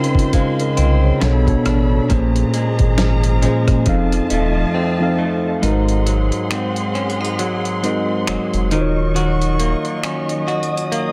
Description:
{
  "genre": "contemporary R&B",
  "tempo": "68 BPM",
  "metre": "4/4",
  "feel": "swing 58% on 16ths",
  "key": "unclear",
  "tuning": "A4 = 436 Hz",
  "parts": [
    { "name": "mellow tine electric piano", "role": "accompaniment", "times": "0.0-11.1 s", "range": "Bb2 to F5", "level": "-22 LUFS", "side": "equal", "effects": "dub echo" },
    { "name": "warm symphonic string section", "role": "sustained chords", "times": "0.0-11.1 s", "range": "Gb3 to Eb6", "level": "-28 LUFS", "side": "equal", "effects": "none" },
    { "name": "direct-recorded clean electric guitar", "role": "arpeggios", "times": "0.0-11.1 s", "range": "F2 to Gb4", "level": "-25 LUFS", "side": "equal", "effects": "dub echo" },
    { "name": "dusty soul sampler-style drum kit", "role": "drums", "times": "0.0-11.1 s", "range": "finger snaps, hi-hat, kick drum, rim click, snare drum", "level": "-25 LUFS", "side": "equal", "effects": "dub echo" },
    { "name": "warm sub bass", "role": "bass", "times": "0.8-9.7 s", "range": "Eb1 to C2", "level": "-20 LUFS", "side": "equal", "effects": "none" }
  ],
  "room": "light reverb, digital ambience",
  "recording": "echo-heavy mix",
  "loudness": "-18 LUFS",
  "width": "mono",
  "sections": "0.0-5.6 A section; 5.6-11.1 B section",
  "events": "silent gap 4.7-5.6; break 5.6-11.1; tine electric piano fill 10.0-11.1",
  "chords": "0.0 Dbmaj7; 1.2 Bm7; 2.1 Bbm7; 3.9 F7; 5.6 Ab7; 8.7 Ebm7",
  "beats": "0.33 1.22 | 2.10 2.98 3.86 4.75 | 5.63 6.51 7.39 8.28 | 9.16 10.04 10.92"
}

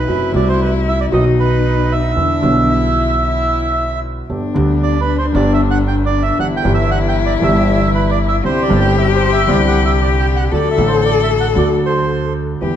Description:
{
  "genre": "tango",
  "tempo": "115 BPM",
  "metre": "4/4",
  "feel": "rubato",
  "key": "E minor, G major from 4.3 s",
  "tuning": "A4 = 440 Hz",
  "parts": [
    { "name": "bandoneon", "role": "melody", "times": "0.0-12.3 s", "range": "B4 to A5", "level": "-20 LUFS", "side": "right 4 dB", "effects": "none" },
    { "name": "warm cello", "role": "second line", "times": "0.0-12.8 s", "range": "D4 to A4", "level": "-18 LUFS", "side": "left 7 dB", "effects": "none" },
    { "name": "warm concert grand piano", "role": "accompaniment", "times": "0.0-12.8 s", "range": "G1 to G4", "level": "-18 LUFS", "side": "right 1 dB", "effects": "none" },
    { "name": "upright bass", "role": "bass", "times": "0.0-12.8 s", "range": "F#1 to E2", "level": "-18 LUFS", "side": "right 1 dB", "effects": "none" }
  ],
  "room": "wet recital hall reverb, RT60 1.4 s",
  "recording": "dark, warm production",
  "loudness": "-12 LUFS",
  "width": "side -10 dB against mid",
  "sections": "0.0-4.3 A section; 4.3-12.8 B section",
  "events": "none",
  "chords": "0.1 F#dim; 1.1 B; 2.2 Em7; 4.3 G; 6.4 Em/G; 8.5 Cadd9; 10.5 D",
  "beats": "| 0.09 0.60 1.12 1.64 | 2.17 2.69 3.22 3.76 | 4.30 4.82 5.35 5.87 | 6.39 6.91 7.43 7.94 | 8.45 8.96 9.48 10.00 | 10.52 11.04 11.56 12.09 | 12.62"
}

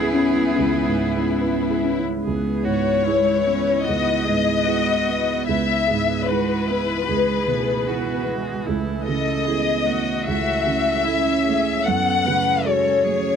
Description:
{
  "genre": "neoclassical piano and strings",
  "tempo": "75 BPM",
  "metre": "4/4",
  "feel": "rubato",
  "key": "C# minor",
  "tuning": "A4 = 440 Hz",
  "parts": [
    { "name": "rich symphonic violin section", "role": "melody", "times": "0.0-13.4 s", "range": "E4 to F#5", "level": "-21 LUFS", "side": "left 6 dB", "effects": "none" },
    { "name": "rich cello", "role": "second line", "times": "0.0-13.4 s", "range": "F#3 to G#4", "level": "-29 LUFS", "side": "right 6 dB", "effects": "none" },
    { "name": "dark grand piano", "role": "accompaniment", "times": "0.0-13.4 s", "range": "C#2 to C#5", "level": "-25 LUFS", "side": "right 6 dB", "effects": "none" },
    { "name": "rich viola", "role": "accompaniment", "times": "0.0-13.4 s", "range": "B3 to B4", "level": "-30 LUFS", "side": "right 2 dB", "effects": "none" },
    { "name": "deep dark ambient pad", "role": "sustained chords", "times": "0.0-13.4 s", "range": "G#3 to G#5", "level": "-28 LUFS", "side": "equal", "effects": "chorus, built-in reverb" },
    { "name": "harp-like synth pluck", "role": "arpeggios", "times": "0.0-2.0 s", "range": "C#4 to B4", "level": "-24 LUFS", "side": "left 5 dB", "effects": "chorus, tape echo" }
  ],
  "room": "light reverb",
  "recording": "dry, close 1970s-style studio recording",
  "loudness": "-18 LUFS",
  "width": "side -7 dB against mid",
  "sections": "0.0-2.2 A section; 2.2-13.4 B section",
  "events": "none",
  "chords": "0.0 C#m7; 8.7 A/C#; 11.8 F#madd9",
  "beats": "0.57 1.42 | 2.25 3.06 3.86 4.66 | 5.47 6.27 7.07 7.86 | 8.66 9.46 10.26 11.05 | 11.85 12.64"
}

